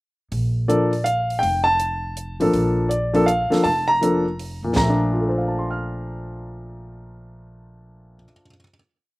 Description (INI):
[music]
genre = jazz piano trio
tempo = 162 BPM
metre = 3/4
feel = swing 65% on 8ths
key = Bb major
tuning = A4 = 440 Hz
[part]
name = upright bass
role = bass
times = 0.3-8.2 s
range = F1 to F2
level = -26 LUFS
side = right 1 dB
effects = none
[part]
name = compact cocktail drum kit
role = drums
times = 0.3-4.9 s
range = hi-hat, kick drum, snare drum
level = -29 LUFS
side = right 1 dB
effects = none
[part]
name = warm grand piano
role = melody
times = 0.7-8.7 s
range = Bb2 to F6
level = -19 LUFS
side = equal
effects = none
[sound]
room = little or no reverb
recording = recorded outdoors, with no room sound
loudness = -18 LUFS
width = side -20 dB against mid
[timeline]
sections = 0.3-4.8 A section; 4.8-7.0 final chord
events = none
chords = 0.3 Bb; 1.4 Bbmaj7